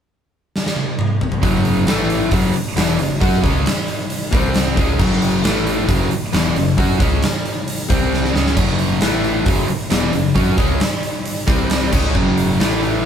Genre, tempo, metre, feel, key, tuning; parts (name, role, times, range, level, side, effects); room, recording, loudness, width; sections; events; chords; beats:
classic rock; 134 BPM; 4/4; straight; F# minor; A4 = 440 Hz
huge arena drum kit; drums; 0.6-12.9 s; crash cymbal, hi-hat, kick drum, snare drum, toms; -18 LUFS; right 1 dB
overdriven semi-hollow guitar; riff; 1.4-13.0 s; E2 to F#4; -20 LUFS; left 5 dB
tight distorted guitar; riff; 1.4-13.0 s; E2 to F#4; -22 LUFS; right 5 dB; distortion
growling picked electric bass; bass; 1.4-13.0 s; E1 to F#2; -22 LUFS; right 1 dB; overdrive
moderate studio ambience, RT60 0.5 s; band playing live in one room; -15 LUFS; side -8 dB against mid
0.0-1.4 A section; 1.4-13.1 B section
drum fill 0.5-1.4, 8.1-8.6
0.0 N.C.; 1.4 F#5; 1.9 A5; 2.3 F#5; 4.3 C5; 4.8 F#5; 5.4 A5; 5.9 F#5; 7.9 C5; 8.3 F#5; 9.0 A5; 9.5 F#5; 11.5 C5; 11.9 F#5; 12.6 A5
0.09 0.54 0.99 | 1.43 1.88 2.32 2.77 | 3.22 3.66 4.11 4.55 | 5.00 5.44 5.89 6.33 | 6.78 7.23 7.67 8.12 | 8.57 9.01 9.46 9.91 | 10.36 10.80 11.25 11.70 | 12.15 12.60 13.05